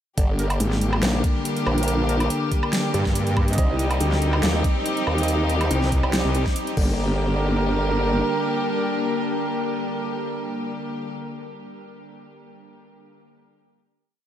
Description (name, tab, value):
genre	heavy wobble dubstep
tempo	141 BPM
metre	4/4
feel	swing 53% on 16ths, half-time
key	G minor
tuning	A4 = 442 Hz
part	rich chamber string section	sustained chords	0.2-11.1 s	D3 to G4	-26 LUFS	left 2 dB	sidechain pumping
part	formant-sweep wobble bass	bass	0.2-8.2 s	G1 to Eb2	-23 LUFS	equal	chorus, overdrive
part	big-room dance drum kit	drums	0.2-6.9 s	crash cymbal, hi-hat, snare drum, woodblock	-29 LUFS	equal	overdrive, studio reverb
part	electronic kick drum	drums	0.2-6.9 s	none	-22 LUFS	equal	overdrive, studio reverb
part	airy breathy pad	texture	0.9-11.1 s	D4 to G5	-31 LUFS	right 1 dB	chorus, sidechain pumping
part	warm brass ensemble	stabs	0.4-11.1 s	G3 to Eb5	-31 LUFS	right 3 dB	diffuse ambient delay
part	metallic wobble bass	bass	0.6-6.4 s	Ab1 to G2	-22 LUFS	equal	distortion, chorus, overdrive
room	moderate huge ambient reverb, RT60 8.0 s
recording	dreamy mix soaked in reverb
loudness	-20 LUFS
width	side -10 dB against mid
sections	0.2-7.0 drop; 7.0-10.4 final note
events	drop 0.2-7.0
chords	0.2 Gm; 3.6 Cm; 6.8 Gm